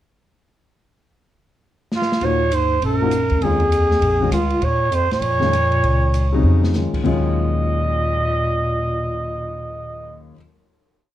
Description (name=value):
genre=modal jazz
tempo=199 BPM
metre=4/4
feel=swing 62% on 8ths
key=Eb dorian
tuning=A4 = 437 Hz
part: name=open jazz drum kit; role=drums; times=1.9-9.4 s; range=crash cymbal, cymbal swell, hi-hat, kick drum, ride cymbal, snare drum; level=-29 LUFS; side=equal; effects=none
part: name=growling trumpet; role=melody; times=2.0-10.2 s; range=F4 to Eb5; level=-21 LUFS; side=right 2 dB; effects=none
part: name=breathy bass clarinet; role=second line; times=2.2-10.2 s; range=Db2 to Bb2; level=-23 LUFS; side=left 1 dB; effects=none
part: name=warm grand piano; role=accompaniment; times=2.2-10.4 s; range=Eb2 to Gb4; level=-24 LUFS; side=left 4 dB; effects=none
part: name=upright bass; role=bass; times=2.2-10.3 s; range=Bb1 to F2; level=-21 LUFS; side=equal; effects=none
room=light reverb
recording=none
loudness=-16 LUFS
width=side -12 dB against mid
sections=1.0-2.2 pickup bar; 2.2-7.0 A section; 7.0-9.5 final chord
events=drum fill 1.9-2.2, 6.4-6.7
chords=1.0 N.C.; 2.2 Ebm11; 4.6 Bbm/Eb; 7.0 Ebm11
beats=| 1.01 1.31 1.61 1.91 | 2.21 2.51 2.81 3.12 | 3.42 3.72 4.02 4.32 | 4.62 4.93 5.23 5.53 | 5.83 6.14 6.44 6.74 | 7.04 7.35 7.65 7.95 | 8.25 8.55 8.85 9.15